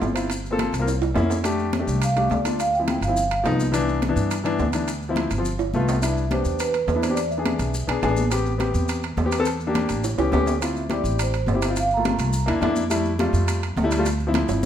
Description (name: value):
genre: Afro-Cuban jazz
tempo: 210 BPM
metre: 4/4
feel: straight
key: C major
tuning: A4 = 440 Hz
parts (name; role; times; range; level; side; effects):
- warm concert grand piano; accompaniment; 0.0-14.6 s; E3 to Bb4; -24 LUFS; left 2 dB; none
- upright bass; bass; 0.0-14.7 s; G1 to G2; -25 LUFS; equal; none
- congas; percussion; 0.0-14.7 s; none; -29 LUFS; left 1 dB; none
- maracas; percussion; 0.0-14.6 s; none; -37 LUFS; left 4 dB; none
- timbales; percussion; 0.0-14.6 s; none; -30 LUFS; right 7 dB; none
- vibraphone with soft mallets; melody; 1.9-3.4, 6.0-7.8, 10.6-12.5 s; B4 to Bb5; -25 LUFS; right 3 dB; none
room: moderate large studio reverb, RT60 1.2 s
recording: minimal, uncompressed stereo recording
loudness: -20 LUFS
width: side -10 dB against mid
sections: 0.0-6.0 A section; 6.0-14.7 B section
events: drum fill 0.9-1.5, 5.6-6.0, 10.0-10.6, 14.5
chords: 0.3 Gm11; 0.9 C7b9; 1.5 F69; 2.6 Dm7; 3.2 Gaug7; 3.7 Cmaj9; 4.9 Dm7; 5.5 G7; 6.0 Cmaj7; 7.2 E7; 8.3 Am7; 9.5 Em7b5; 10.0 A7; 10.6 Dm9; 11.8 Gm7; 12.3 C7; 12.9 Fmaj7; 14.1 Dm7